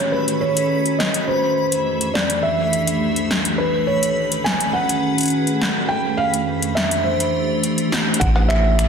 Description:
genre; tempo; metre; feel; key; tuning
IDM; 104 BPM; 4/4; straight; unclear; A4 = 439 Hz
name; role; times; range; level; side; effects
felt-muted upright piano; melody; 0.0-8.9 s; B4 to G#5; -21 LUFS; equal; tape echo
icy glass pad; sustained chords; 0.0-8.9 s; D#3 to C5; -22 LUFS; right 1 dB; chorus, built-in reverb
backwards swelling texture; texture; 0.0-8.2 s; A3 to B5; -27 LUFS; left 1 dB; built-in reverb
electro analog drum machine; drums; 0.3-8.9 s; cowbell, finger snaps, hi-hat, snare drum; -23 LUFS; left 1 dB; none
rubbery square bass; bass; 8.2-8.9 s; A1; -17 LUFS; equal; none
electronic kick drum; drums; 8.2-8.3 s; none; -20 LUFS; equal; none
room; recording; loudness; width
wet lush hall reverb, RT60 1.6 s; dense, heavily limited modern master; -17 LUFS; side -6 dB against mid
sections
0.0-8.2 A section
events
none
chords
0.0 Badd9; 1.3 Fmaj9; 2.4 Cmaj9; 3.6 Amaj9; 4.5 Badd9; 5.9 Fmaj9; 7.1 Cmaj9; 8.2 Amaj9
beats
0.13 0.71 | 1.29 1.86 2.44 3.02 | 3.60 4.17 4.75 5.33 | 5.90 6.48 7.06 7.63 | 8.21 8.79

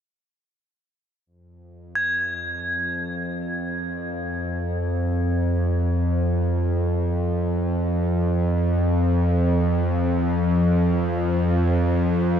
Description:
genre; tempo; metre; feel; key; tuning
world meditative, free-time meditation music; free time; none; none; F hirajoshi; A4 = 440 Hz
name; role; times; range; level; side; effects
bowed-like drone; drone; 2.1-12.4 s; F2; -21 LUFS; equal; built-in reverb
crotales; texture; 2.0-11.1 s; Ab6; -27 LUFS; equal; none
room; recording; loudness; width
wet huge ambient reverb, RT60 4.8 s; dark, warm production; -20 LUFS; side -8 dB against mid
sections
1.2-12.4 A section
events
none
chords
none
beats
free time

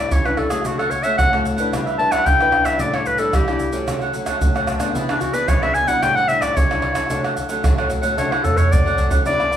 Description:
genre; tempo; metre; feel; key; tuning
samba and choro; 112 BPM; 4/4; straight; D major; A4 = 438 Hz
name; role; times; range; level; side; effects
warm clarinet; melody; 0.0-9.6 s; D4 to A5; -19 LUFS; left 1 dB; none
nylon-string guitar; accompaniment; 0.0-9.6 s; G2 to B4; -25 LUFS; left 2 dB; none
egg shaker, surdo, pandeiro and tamborim; percussion; 0.1-9.6 s; none; -20 LUFS; right 1 dB; none
cavaquinho; accompaniment; 0.6-9.6 s; D4 to G5; -26 LUFS; right 2 dB; none
room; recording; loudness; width
wet large studio reverb, RT60 0.8 s; band playing live in one room; -16 LUFS; side -10 dB against mid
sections
0.0-9.2 A section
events
clarinet solo 0.0-9.2; drum fill 8.2-9.2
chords
0.0 A7sus4; 0.7 Dmaj7; 1.7 G6; 2.8 A7sus4; 3.9 Dmaj7; 5.0 E7; 6.0 A7sus4; 7.1 Dmaj7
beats
0.12 | 0.66 1.19 1.73 2.27 | 2.80 3.34 3.88 4.42 | 4.95 5.49 6.03 6.57 | 7.10 7.64 8.18 8.71 | 9.25

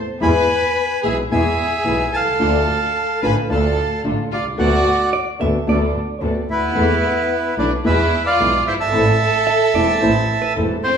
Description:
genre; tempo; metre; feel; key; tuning
tango; 110 BPM; 4/4; rubato; unclear; A4 = 440 Hz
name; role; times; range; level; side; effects
bandoneon; melody; 0.2-11.0 s; E4 to B5; -19 LUFS; right 3 dB; none
warm studio violin section; second line; 0.2-11.0 s; B3 to B4; -22 LUFS; left 2 dB; none
nylon-string guitar; accompaniment; 0.2-10.7 s; B2 to F#4; -22 LUFS; left 1 dB; none
muted studio string section; stabs; 0.2-10.8 s; B3 to A4; -30 LUFS; right 1 dB; none
clear double bass; bass; 0.2-10.8 s; E1 to E2; -22 LUFS; equal; none
hollow-body jazz guitar; second line; 5.1-11.0 s; A4 to E5; -26 LUFS; right 3 dB; none
room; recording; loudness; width
wet large studio reverb, RT60 1.2 s; band playing live in one room; -15 LUFS; side -7 dB against mid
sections
0.0-11.0 A section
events
none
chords
0.2 E; 2.4 Dm; 4.6 Bm7/D; 6.8 Esus4; 7.8 E; 8.9 Am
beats
| 0.23 0.77 1.32 1.87 | 2.42 2.96 3.51 4.05 | 4.59 5.14 5.68 6.22 | 6.76 7.30 7.84 8.39 | 8.93 9.47 10.02 10.57

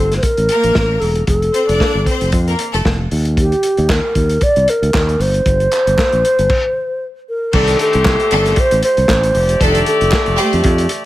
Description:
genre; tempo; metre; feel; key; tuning
disco; 115 BPM; 4/4; swing 56% on 16ths; C dorian; A4 = 436 Hz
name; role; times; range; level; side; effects
wooden-headed alto flute; melody; 0.0-10.9 s; G4 to D5; -15 LUFS; equal; none
fingered electric bass; bass; 0.0-10.9 s; E1 to F2; -17 LUFS; equal; none
vintage drum kit; drums; 0.1-11.0 s; crash cymbal, hi-hat, kick drum, snare drum; -18 LUFS; equal; none
bright studio string section; second line; 0.5-2.8, 7.5-10.6 s; Eb3 to D5; -21 LUFS; left 1 dB; none
group handclap; percussion; 3.9-10.3 s; none; -24 LUFS; right 2 dB; none
clear horn section; stabs; 7.5-11.1 s; A3 to D5; -21 LUFS; left 2 dB; none
room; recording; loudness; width
studio ambience; none; -12 LUFS; side -15 dB against mid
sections
0.0-7.5 A section; 7.5-11.1 B section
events
stop 6.5-7.5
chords
0.0 Bb5; 1.3 F; 3.1 Eb; 5.2 Gsus4; 7.5 C5; 9.3 F69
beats
0.24 0.76 | 1.28 1.80 2.33 2.85 | 3.37 3.89 4.41 4.93 | 5.45 5.97 6.49 7.01 | 7.53 8.05 8.57 9.09 | 9.61 10.13 10.65

